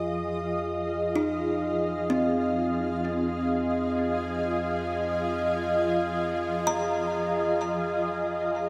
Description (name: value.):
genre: ambient.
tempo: free time.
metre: none.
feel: none.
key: F minor.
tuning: A4 = 436 Hz.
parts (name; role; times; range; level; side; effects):
shimmering ambient pad; sustained chords; 0.0-8.7 s; F3 to F5; -29 LUFS; equal; chorus, built-in reverb.
deep rumbling drone; bass; 0.0-8.7 s; F2; -44 LUFS; equal; built-in reverb.
kalimba; arpeggios; 1.2-8.7 s; C4 to Bb5; -33 LUFS; equal; tape echo.
room: wet cathedral reverb, RT60 6.5 s.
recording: in a vast, echoing space.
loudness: -28 LUFS.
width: mono.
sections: 0.0-8.7 A section.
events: fade-out on synth drone 0.0-8.7.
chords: 0.0 Fm7.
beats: free time.